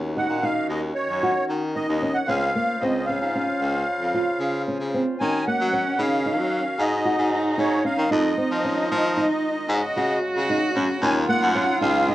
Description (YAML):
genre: contemporary instrumental, chamber music in an uneven meter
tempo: 227 BPM (eighths)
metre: 11/8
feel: straight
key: Eb dorian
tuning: A4 = 440 Hz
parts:
  - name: clear woodwind section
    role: sustained chords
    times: 0.0-12.1 s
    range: Db3 to C5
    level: -32 LUFS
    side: left 1 dB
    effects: none
  - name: nylon-string guitar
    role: arpeggios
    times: 0.0-12.1 s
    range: Bb3 to Gb4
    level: -26 LUFS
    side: equal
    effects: none
  - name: bright baritone saxophone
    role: bass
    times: 0.0-12.1 s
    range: Db2 to Gb3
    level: -26 LUFS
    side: left 1 dB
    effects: none
  - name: musette accordion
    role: melody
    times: 0.2-12.1 s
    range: Db5 to Ab5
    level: -25 LUFS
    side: equal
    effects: none
  - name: rich cello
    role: second line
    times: 5.2-12.1 s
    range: Db4 to Gb4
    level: -27 LUFS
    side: right 2 dB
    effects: none
room: moderate studio ambience, RT60 0.4 s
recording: worn, warbling old tape, cassette tape, warbly pitch drift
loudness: -20 LUFS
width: side -15 dB against mid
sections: 0.0-5.2 A section; 5.2-12.1 B section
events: none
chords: 0.0 Ebm7; 2.3 Dbmaj7; 5.2 Ebm7; 6.8 Ab7sus4; 8.1 Fm7; 9.7 Ab7sus4; 11.0 Ebm7